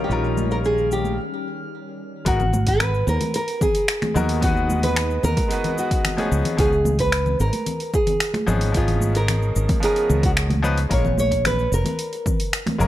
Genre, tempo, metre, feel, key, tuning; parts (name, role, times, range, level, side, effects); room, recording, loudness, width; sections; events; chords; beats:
sunset chillout; 111 BPM; 4/4; straight; G# dorian; A4 = 441 Hz
nylon-string guitar; melody; 0.0-12.8 s; E#4 to C#5; -24 LUFS; equal; ping-pong delay
bright grand piano; accompaniment; 0.0-12.9 s; E#3 to B4; -27 LUFS; moving between left 5 dB and right 2 dB; auto-pan, ping-pong delay
soft string machine; sustained chords; 0.0-2.2 s; D#3 to C#4; -31 LUFS; left 3 dB; phaser, ensemble chorus
fretless electric bass; bass; 0.0-12.9 s; E#1 to D#2; -22 LUFS; equal; ensemble chorus
drifting glass-harmonics texture; texture; 0.0-1.2 s; E#6; -39 LUFS; equal; chorus, built-in reverb
deep house drum kit; drums; 0.1-12.9 s; cabasa, congas, finger snaps, hi-hat; -26 LUFS; left 2 dB; overdrive
congas; percussion; 0.4-12.9 s; -29 LUFS; right 3 dB
electronic kick drum; drums; 2.3-12.4 s; -24 LUFS; equal; overdrive
light reverb; -18 LUFS; side -14 dB against mid
0.0-2.3 A section; 2.3-12.9 B section
break 1.2-2.3
0.0 D#9/A#; 2.3 G#m9; 6.3 C#9; 10.9 A#m
| 0.10 0.64 1.18 1.72 | 2.26 2.80 3.34 3.88 | 4.42 4.96 5.50 6.04 | 6.58 7.12 7.67 8.21 | 8.75 9.29 9.83 10.37 | 10.91 11.45 11.99 12.53